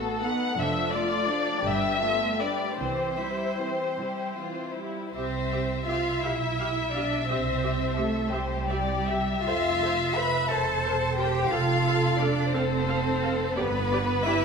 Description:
classical, slow romantic movement for string orchestra; 50-60 BPM (dotted quarters); 6/8; rubato; C major; A4 = 439 Hz
rich chamber violin section; melody; 0.0-14.4 s; A4 to F#5; -30 LUFS; left 4 dB
warm chamber violin section; second line; 0.0-14.4 s; D4 to B5; -30 LUFS; left 5 dB
rich studio viola section; accompaniment; 0.0-14.3 s; E3 to F5; -33 LUFS; right 2 dB
rich chamber cello section; bass; 0.0-14.4 s; F2 to B4; -30 LUFS; right 4 dB
warm chamber double bass section; bass; 0.0-14.4 s; E1 to C2; -31 LUFS; right 4 dB
wet concert hall reverb, RT60 1.8 s; minimal, uncompressed stereo recording; -24 LUFS; side -5 dB against mid
0.0-5.1 A section; 5.1-14.4 B section
0.0 B7/A; 0.6 Dm/F; 1.6 G9; 2.8 C; 6.2 G7/B; 7.3 C; 9.5 Fmaj7; 10.5 C7/E; 11.5 F; 13.6 G
| 0.58 1.64 | 2.79 3.98 | 5.14 6.23 | 7.30 8.32 | 9.46 10.50 | 11.52 12.54 | 13.57

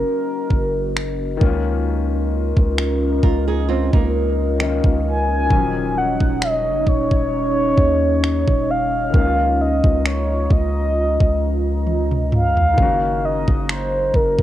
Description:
contemporary R&B; 66 BPM; 4/4; swing 54% on 16ths; Db major; A4 = 443 Hz
mellow horn-like synth lead; melody; 0.0-14.4 s; Bb4 to Ab5; -21 LUFS; equal; chorus, tape echo
warm grand piano; accompaniment; 0.0-14.4 s; Eb3 to Gb4; -27 LUFS; left 8 dB
deep dark ambient pad; sustained chords; 0.0-14.4 s; Db4 to Bb5; -23 LUFS; left 1 dB; chorus, built-in reverb
long sustained 808-style bass; bass; 0.0-14.4 s; Eb1 to Eb2; -22 LUFS; equal
trap drum kit; drums; 0.5-14.4 s; finger snaps, kick drum, toms; -18 LUFS; equal; cassette tape
flamenco guitar; arpeggios; 3.2-5.3 s; Bb3 to Bb4; -26 LUFS; right 9 dB; tape echo
digital ambience; home recording on cassette; -16 LUFS; side -12 dB against mid
0.0-14.4 A section
drum fill 11.9-12.8
0.0 Gb6; 1.4 Db69; 5.5 Ebm9; 9.1 Db69; 12.8 Gb6
0.05 0.96 | 1.87 2.78 3.69 4.59 | 5.50 6.41 7.32 8.23 | 9.14 10.05 10.96 11.87 | 12.78 13.69

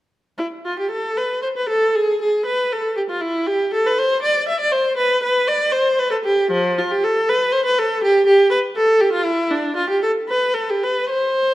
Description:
classical, baroque-style suite movement for unaccompanied viola; 71-82 BPM (dotted quarters); 6/8; rubato; C major from 6.5 s; A4 = 445 Hz
rich viola; solo; 0.4-11.5 s; F3 to E5; -16 LUFS; equal
wet recital hall reverb, RT60 1.4 s; -16 LUFS; side -15 dB against mid
0.4-11.5 A section
| 0.37 1.17 | 1.94 2.71 | 3.47 4.23 | 4.98 5.72 | 6.52 7.27 | 8.01 8.75 | 9.50 10.28 | 11.10

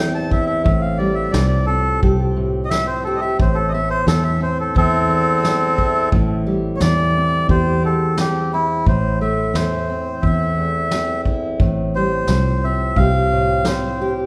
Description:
acoustic folk duo or small band; 88 BPM; 4/4; straight; A minor; A4 = 435 Hz
melodica; melody; 0.0-14.1 s; C4 to A5; -23 LUFS; equal
fingerpicked steel-string acoustic guitar; accompaniment; 0.0-14.3 s; E2 to G4; -24 LUFS; equal
fingered electric bass; bass; 0.0-14.3 s; A1 to E2; -23 LUFS; equal
vintage brush drum kit; drums; 0.3-13.8 s; kick drum, snare drum; -24 LUFS; equal
wet recital hall reverb, RT60 1.4 s; recorded in a church or concert hall; -18 LUFS; mono
0.0-8.9 A section; 8.9-14.3 B section
melodica solo 0.0-8.9
0.0 Amadd9; 0.7 Fadd9/A; 3.4 Amadd9; 6.1 Am7; 8.9 Am; 11.6 Fadd9/A
| 0.66 1.34 2.03 2.71 | 3.39 4.08 4.76 5.44 | 6.13 6.81 7.50 8.18 | 8.86 9.55 10.23 10.92 | 11.60 12.29 12.97 13.66

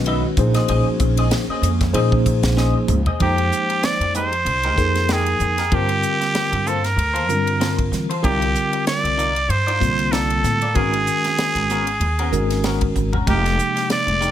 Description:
electric jazz fusion; 95 BPM; 4/4; swing 56% on 16ths; A4 = 440 Hz
tine electric piano; accompaniment; 0.0-14.3 s; C3 to Eb5; -23 LUFS; equal; medium stereo tremolo
evolving wavetable pad; sustained chords; 0.0-3.2 s; Db3 to Gb4; -30 LUFS; right 1 dB; ensemble chorus, built-in reverb, phaser
upright bass; bass; 0.0-14.3 s; F1 to E3; -22 LUFS; equal
clean electric guitar; stabs; 0.1-14.3 s; Ab3 to Fb5; -28 LUFS; left 3 dB; lush chorus
tight funk drum kit; drums; 0.1-14.3 s; hi-hat, kick drum, ride cymbal, snare drum, splash cymbal, toms; -25 LUFS; equal
trumpet with straight mute; melody; 3.2-14.3 s; G4 to D5; -20 LUFS; right 2 dB
light reverb; -17 LUFS; side -11 dB against mid
0.0-3.2 A section; 3.2-14.3 B section
drum fill 2.6-3.2, 13.0-13.3
0.4 Bbm11; 3.2 Fm11; 5.7 Gm11; 8.2 Cm11; 10.8 Abm11; 13.3 Fm11
0.06 | 0.69 1.31 1.94 2.57 | 3.20 3.83 4.46 5.09 | 5.72 6.35 6.98 7.61 | 8.23 8.87 9.49 10.12 | 10.75 11.38 12.01 12.64 | 13.27 13.90

